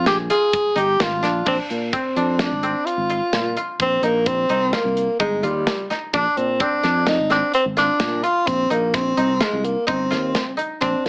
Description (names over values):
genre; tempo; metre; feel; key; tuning
progressive instrumental, band music in an uneven meter; 128 BPM; 5/4; straight; Bb mixolydian; A4 = 440 Hz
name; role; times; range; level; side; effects
breathy tenor saxophone; melody; 0.0-11.1 s; G3 to Ab4; -19 LUFS; equal; none
koto; arpeggios; 0.0-11.1 s; C4 to Ab4; -26 LUFS; equal; none
sustaining fretless electric bass; bass; 0.0-11.1 s; G1 to Bb2; -25 LUFS; equal; wide subtle chorus
tight metal drum kit; drums; 0.1-11.1 s; crash cymbal, hi-hat, kick drum, snare drum; -24 LUFS; equal; none
room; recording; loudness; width
moderate studio reverb, RT60 0.6 s; AM radio sound; -17 LUFS; side -32 dB against mid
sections
0.0-1.5 A section; 1.5-11.1 B section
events
tenor saxophone solo 0.0-1.5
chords
0.0 Bb7; 1.5 Bb9; 3.8 Abmaj13 (rootless); 6.1 Bb9; 8.5 Ab69 (rootless)